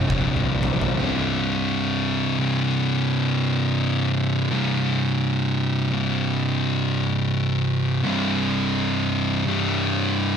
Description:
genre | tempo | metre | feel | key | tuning
stoner and doom metal | 68 BPM | 4/4 | swing 60% on 8ths | unclear | A4 = 442 Hz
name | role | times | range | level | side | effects
thick fuzz guitar | riff | 0.0-10.4 s | C2 to C3 | -23 LUFS | left 7 dB | distortion
thick fuzz guitar | riff | 0.0-10.4 s | C2 to C3 | -24 LUFS | right 7 dB | distortion
fuzz fingered electric bass | bass | 0.0-0.9 s | Bb1 | -28 LUFS | equal | overdrive
oversized low-tuned drum kit | drums | 0.1-1.0 s | kick drum, toms | -28 LUFS | equal | none
room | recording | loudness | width
little or no reverb | none | -20 LUFS | side -7 dB against mid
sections
1.0-10.4 A section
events
drum fill 0.0-1.0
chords
0.0 C5

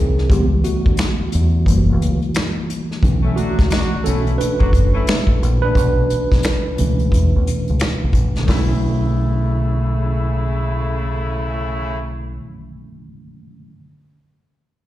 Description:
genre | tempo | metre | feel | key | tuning
R&B, neo-soul | 88 BPM | 4/4 | swing 61% on 16ths | B minor | A4 = 440 Hz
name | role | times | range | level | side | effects
tine electric piano | accompaniment | 0.0-13.7 s | B2 to B4 | -22 LUFS | right 1 dB | overdrive, fast stereo tremolo, slapback echo
deep dub fingered electric bass | bass | 0.0-12.4 s | F#1 to E2 | -18 LUFS | equal | none
unplugged drum kit | drums | 0.2-8.7 s | finger snaps, hi-hat, kick drum, snare drum | -18 LUFS | equal | none
warm horn section | stabs | 3.2-12.0 s | C#3 to F#4 | -26 LUFS | left 1 dB | slapback echo
room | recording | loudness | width
little or no reverb | live gig heard through the venue's PA, recital hall reverb | -15 LUFS | side -14 dB against mid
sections
0.0-8.5 A section; 8.5-11.2 B section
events
tine electric piano solo 0.0-8.5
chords
0.3 C#dim; 1.7 F#7b9; 3.0 Bm11

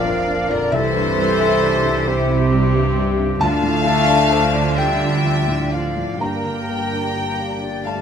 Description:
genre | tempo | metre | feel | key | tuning
cinematic | 44 BPM (dotted quarters) | 6/8 | rubato | unclear | A4 = 438 Hz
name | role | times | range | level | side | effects
warm symphonic violin section | melody | 0.0-8.0 s | Bb4 to G5 | -28 LUFS | left 4 dB | none
dark clarinet | second line | 0.0-8.0 s | F4 to D5 | -25 LUFS | left 1 dB | none
small flute group | second line | 0.0-8.0 s | D5 to Bb5 | -25 LUFS | left 3 dB | none
warm symphonic violin section | second line | 0.0-8.0 s | Bb4 to G5 | -26 LUFS | equal | none
dark symphonic viola section | accompaniment | 0.0-8.0 s | C4 to Bb4 | -27 LUFS | right 3 dB | none
felt-muted upright piano | accompaniment | 0.0-8.0 s | Bb1 to Bb5 | -24 LUFS | left 3 dB | none
warm French horn section | sustained chords | 0.0-8.0 s | D3 to Bb3 | -25 LUFS | left 3 dB | none
dark chamber double bass section | bass | 0.0-8.0 s | G1 to D2 | -24 LUFS | right 4 dB | none
warm symphonic cello section | bass | 0.0-8.0 s | G2 to D3 | -25 LUFS | right 2 dB | none
room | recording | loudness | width
moderate scoring stage reverb, RT60 1.9 s | none | -16 LUFS | side -8 dB against mid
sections
0.0-8.0 A section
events
none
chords
0.0 Bb; 0.7 C; 3.4 Dm; 6.2 Gm

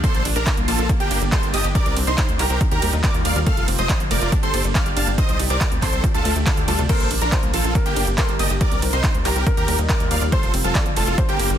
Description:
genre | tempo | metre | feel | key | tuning
uplifting trance | 140 BPM | 4/4 | straight | G minor | A4 = 441 Hz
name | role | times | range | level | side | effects
big supersaw lead | melody | 0.0-11.5 s | Bb3 to A5 | -25 LUFS | right 1 dB | sidechain pumping, dub echo
plucky unison lead | second line | 0.0-11.5 s | G5 to A6 | -30 LUFS | equal | ensemble chorus, sidechain pumping, dub echo
wide unison pluck | arpeggios | 0.0-11.6 s | C3 to C5 | -30 LUFS | left 4 dB | sidechain pumping, dub echo
tight sequencer bass | bass | 0.0-11.6 s | F1 to Eb2 | -23 LUFS | equal | sidechain pumping
big-room dance drum kit | drums | 0.0-11.6 s | crash cymbal, handclaps, hi-hat, ride cymbal | -26 LUFS | right 2 dB | overdrive, sidechain pumping on hats, sidechain pumping on cymbals
electronic kick drum | drums | 0.0-11.3 s | none | -21 LUFS | equal | overdrive
dark baby grand piano | second line | 6.9-11.6 s | Bb4 to D5 | -31 LUFS | left 3 dB | dub echo
room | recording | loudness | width
little or no reverb | dense, heavily limited modern master | -17 LUFS | side -10 dB against mid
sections
0.0-11.6 A section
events
none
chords
0.0 Bbadd9; 0.9 Gm; 1.8 Cmadd9; 2.6 Ebadd9; 3.5 Fadd9; 4.3 Gm; 5.2 Cmadd9; 6.0 Dsus4; 6.9 Bbadd9; 7.8 Gm; 8.6 Cmadd9; 9.5 Ebadd9; 10.3 Fadd9

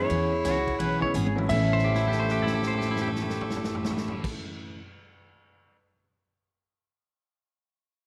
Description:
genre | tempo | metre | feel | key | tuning
country, western swing | 171 BPM | 4/4 | swing 64% on 8ths | A major | A4 = 440 Hz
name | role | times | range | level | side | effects
clean lap steel guitar | melody | 0.0-4.2 s | G#4 to E5 | -33 LUFS | equal | tape echo
clear fiddle | second line | 0.0-4.2 s | E4 to A4 | -39 LUFS | equal | none
bright upright piano | accompaniment | 0.0-4.5 s | A2 to A6 | -38 LUFS | equal | none
upright bass | bass | 0.0-4.2 s | G#1 to E2 | -33 LUFS | equal | none
picked steel-string acoustic guitar | accompaniment | 0.1-4.8 s | A2 to G#4 | -33 LUFS | equal | none
swinging big-band drum kit | drums | 0.1-5.8 s | crash cymbal, hi-hat, kick drum, ride cymbal, snare drum, toms | -38 LUFS | equal | none
pedal steel guitar | second line | 0.4-4.3 s | A3 to C#5 | -33 LUFS | equal | none
room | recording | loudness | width
light reverb, small room ambience | none | -27 LUFS | mono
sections
0.0-1.5 A section; 1.5-4.3 B section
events
drum fill 1.1-1.5, 1.7-4.2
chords
0.1 E6; 1.5 A6

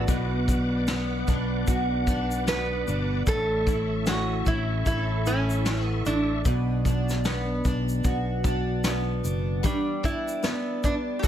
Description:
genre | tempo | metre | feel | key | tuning
acoustic pop | 75 BPM | 4/4 | swing 60% on 16ths | B minor | A4 = 438 Hz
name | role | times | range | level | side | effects
metal-body resonator slide guitar | melody | 0.0-11.3 s | C#4 to B4 | -29 LUFS | right 2 dB | none
picked steel-string acoustic guitar | accompaniment | 0.0-11.3 s | A2 to A4 | -28 LUFS | equal | double-tracked left and right
bright tonewheel organ | sustained chords | 0.0-6.4 s | A4 to D6 | -36 LUFS | equal | chorus vibrato, fast rotary speaker
fretless electric bass | bass | 0.0-9.6 s | F#1 to B1 | -28 LUFS | equal | none
vintage brush drum kit | drums | 0.1-11.3 s | kick drum, shaker, snare drum | -27 LUFS | equal | none
room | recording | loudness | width
studio ambience | none | -23 LUFS | side -10 dB against mid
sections
0.0-11.3 A section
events
none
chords
0.1 Bm; 3.3 A; 6.5 Bm; 9.6 G

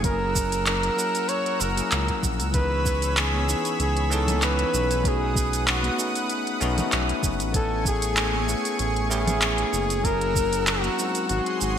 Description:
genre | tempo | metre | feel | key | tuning
sunset chillout | 96 BPM | 4/4 | swing 54% on 16ths | unclear | A4 = 440 Hz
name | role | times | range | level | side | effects
warm flugelhorn | melody | 0.0-11.8 s | F#4 to C#5 | -27 LUFS | left 1 dB | digital delay
bell-like tine electric piano | accompaniment | 0.0-11.8 s | E3 to G#5 | -29 LUFS | moving between left 6 dB and right 5 dB | auto-pan, digital delay
round analog bass | bass | 0.0-11.8 s | F#1 to C#2 | -27 LUFS | equal | none
electronic kick drum | drums | 0.0-10.5 s | none | -27 LUFS | equal | none
smooth R&B drum kit | drums | 0.0-11.7 s | handclaps, hi-hat, shaker | -28 LUFS | right 1 dB | gated reverb
lush unison pad | sustained chords | 0.1-11.8 s | A3 to E6 | -31 LUFS | equal | chorus
congas | percussion | 3.3-11.0 s | none | -34 LUFS | left 1 dB | none
room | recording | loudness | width
moderate lush hall reverb, RT60 2.1 s | bright 1980s-style digital production | -21 LUFS | side -8 dB against mid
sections
0.0-11.8 A section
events
none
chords
0.0 F#7; 2.5 C#m7; 5.0 B7; 7.5 Amaj7; 10.0 F#7

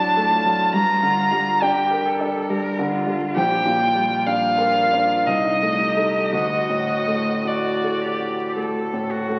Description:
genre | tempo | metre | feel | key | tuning
classical, slow romantic movement for piano trio | 53-71 BPM | 3/4 | rubato | G minor | A4 = 440 Hz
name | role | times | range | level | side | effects
warm violin | melody | 0.0-8.6 s | D5 to Bb5 | -22 LUFS | equal | none
rich cello | second line | 0.0-9.4 s | D4 to Bb4 | -32 LUFS | equal | none
warm concert grand piano | accompaniment | 0.0-9.4 s | Bb1 to C5 | -26 LUFS | equal | none
room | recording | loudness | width
wet concert hall reverb, RT60 1.9 s | very old 78 rpm record, vinyl crackle | -21 LUFS | mono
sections
0.0-9.4 A section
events
none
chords
0.0 D7/A; 0.7 Gm; 3.4 Gm/Bb; 5.3 Adim/C; 6.3 D

